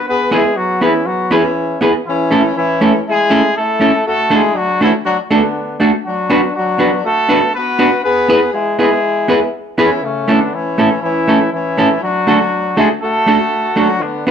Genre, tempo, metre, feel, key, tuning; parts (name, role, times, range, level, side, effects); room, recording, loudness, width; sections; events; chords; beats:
ska; 120 BPM; 4/4; swing 54% on 8ths; A major; A4 = 440 Hz
mellow horn section; melody; 0.0-14.3 s; C#3 to B4; -15 LUFS; left 1 dB; plate reverb
hollow-body jazz guitar; accompaniment; 0.3-14.3 s; A3 to B4; -14 LUFS; right 1 dB; plate reverb
wet studio reverb, RT60 0.6 s; cassette tape; -12 LUFS; side -8 dB against mid
0.0-10.0 A section; 10.0-14.3 B section
0.1 E; 2.0 A; 4.0 D; 6.0 Bm; 8.0 E; 10.0 A; 12.0 D
| 0.06 0.55 1.05 1.55 | 2.05 2.55 3.05 3.55 | 4.04 4.54 5.04 5.54 | 6.04 6.54 7.03 7.53 | 8.03 8.53 9.03 9.52 | 10.02 10.52 11.02 11.51 | 12.01 12.51 13.01 13.51 | 14.00